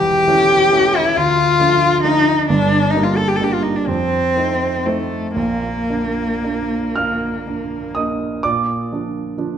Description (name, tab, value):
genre	classical, romantic duo for cello and grand piano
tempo	36-46 BPM (dotted quarters)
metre	6/8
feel	rubato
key	Bb major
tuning	A4 = 440 Hz
part	warm cello	melody	0.0-7.9 s	A3 to A4	-16 LUFS	left 2 dB	none
part	warm grand piano	accompaniment	0.0-9.6 s	E1 to F6	-19 LUFS	right 3 dB	none
room	wet recital hall reverb, RT60 1.4 s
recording	minimal, uncompressed stereo recording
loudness	-15 LUFS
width	side -8 dB against mid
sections	0.0-8.4 A section; 8.4-9.6 B section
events	none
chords	0.0 A7/E; 1.2 Dm; 2.5 Gm; 3.9 F7; 5.4 Bb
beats	1.15 | 2.48 3.88 | 5.37 6.97 | 8.44